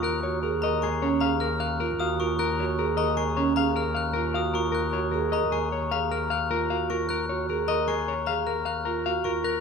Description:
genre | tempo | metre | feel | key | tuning
classical, minimalist pattern music | 153 BPM | 6/4 | straight | Eb minor | A4 = 440 Hz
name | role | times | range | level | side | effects
electric guitar at the edge of break-up | melody | 0.0-9.6 s | Ab4 to F5 | -28 LUFS | left 9 dB | none
glockenspiel with hard plastic mallets | arpeggios | 0.0-9.6 s | Bb5 to Gb6 | -31 LUFS | left 5 dB | none
vibraphone with soft mallets | arpeggios | 0.0-9.5 s | Db4 to Bb4 | -29 LUFS | right 7 dB | none
warm double bass | bass | 0.0-9.6 s | Eb2 | -31 LUFS | right 3 dB | none
room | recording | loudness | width
moderate recital hall reverb, RT60 1.4 s | minimal, uncompressed stereo recording | -24 LUFS | side -5 dB against mid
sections
0.0-9.6 A section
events
none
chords
0.0 Ebm9

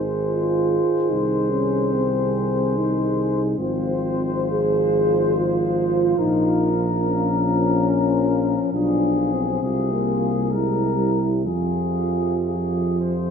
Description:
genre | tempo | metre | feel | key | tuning
classical, hymn-like piece for brass band | 54-75 BPM | 3/4 | rubato | Ab major, F minor from 3.6 s | A4 = 440 Hz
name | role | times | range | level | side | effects
dark trumpet section | melody | 0.0-13.3 s | Ab4 to C5 | -28 LUFS | left 7 dB | none
mellow French horn section | second line | 0.0-13.3 s | E4 to Ab4 | -27 LUFS | right 7 dB | none
clear trombone | accompaniment | 0.0-13.3 s | C3 to F3 | -31 LUFS | right 3 dB | none
dark euphonium | accompaniment | 0.0-13.3 s | F3 to Ab4 | -22 LUFS | left 2 dB | none
warm tuba | bass | 0.0-13.3 s | Ab1 to F2 | -24 LUFS | right 1 dB | none
room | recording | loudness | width
moderate scoring stage reverb, RT60 1.6 s | minimal, uncompressed stereo recording | -19 LUFS | side -6 dB against mid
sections
0.0-13.3 A section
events
none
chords
0.0 Ab; 1.1 Ab/C; 3.6 Fm/Ab; 6.2 Bbm; 8.7 Bdim7; 9.6 Fm/C; 10.5 C7; 11.5 Fm

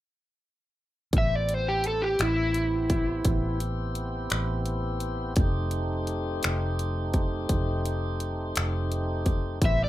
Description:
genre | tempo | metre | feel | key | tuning
slow blues | 56 BPM (dotted quarters) | 12/8 | straight | A minor | A4 = 439 Hz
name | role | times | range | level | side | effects
tonewheel organ | sustained chords | 1.1-9.9 s | A3 to G4 | -33 LUFS | equal | slow rotary speaker, overdrive
vintage muted fingered electric bass | bass | 1.1-9.9 s | F1 to A1 | -29 LUFS | equal | none
dubstep drum kit | drums | 1.1-9.8 s | finger snaps, hi-hat, kick drum | -27 LUFS | equal | none
overdriven electric guitar | melody | 1.2-9.9 s | E4 to E5 | -26 LUFS | equal | none
room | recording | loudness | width
light reverb | rough home demo mix | -25 LUFS | side -15 dB against mid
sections
1.1-9.9 A section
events
none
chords
1.1 Am7; 5.4 F7

